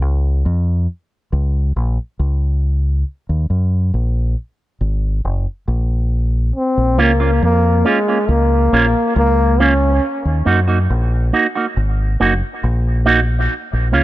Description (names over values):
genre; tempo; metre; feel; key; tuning
dub reggae; 69 BPM; 4/4; straight; Bb minor; A4 = 437 Hz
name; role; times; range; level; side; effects
deep dub fingered electric bass; bass; 0.0-14.0 s; Gb1 to Gb2; -15 LUFS; equal; none
breathy trombone; melody; 6.6-10.0 s; Ab3 to Db4; -16 LUFS; left 1 dB; dub echo
electric guitar with an envelope filter; accompaniment; 7.0-14.0 s; Bb3 to Gb4; -18 LUFS; right 4 dB; dub echo
room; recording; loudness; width
studio ambience; none; -14 LUFS; side -15 dB against mid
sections
0.0-6.5 A section; 6.5-14.0 B section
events
break 0.0-6.5, 10.0-14.0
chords
0.0 Bbm (rootless); 3.1 Ebm (rootless); 6.5 Bbm; 10.0 Ebm; 13.5 Bbm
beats
0.46 1.32 2.19 | 3.06 3.94 4.80 5.67 | 6.54 7.41 8.28 9.15 | 10.02 10.89 11.76 12.63 | 13.50